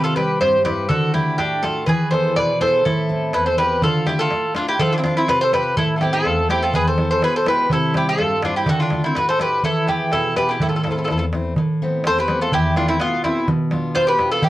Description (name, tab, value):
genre	greek folk, Greek bouzouki band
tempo	124 BPM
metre	2/4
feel	straight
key	A minor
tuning	A4 = 440 Hz
part	Greek bouzouki	melody	0.0-14.5 s	E4 to D5	-19 LUFS	equal	none
part	mandolin	second line	0.0-14.5 s	B3 to B4	-25 LUFS	right 1 dB	none
part	picked steel-string acoustic guitar	accompaniment	0.0-14.5 s	E2 to E5	-24 LUFS	left 2 dB	none
part	darbuka	percussion	0.2-14.5 s	none	-23 LUFS	right 2 dB	none
room	moderate studio reverb, RT60 0.6 s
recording	worn, warbling old tape, cassette tape, warbly pitch drift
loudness	-16 LUFS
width	side -15 dB against mid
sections	0.0-3.8 A section; 3.8-11.6 A section; 11.6-14.5 B section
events	none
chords	0.0 C; 0.9 D; 1.9 E; 2.9 Am; 3.8 Dm; 4.8 F; 5.8 Amadd9; 6.7 E; 7.7 C; 8.7 D; 9.6 E; 10.6 Am; 11.6 Amadd9; 12.5 Esus4; 13.5 Bdim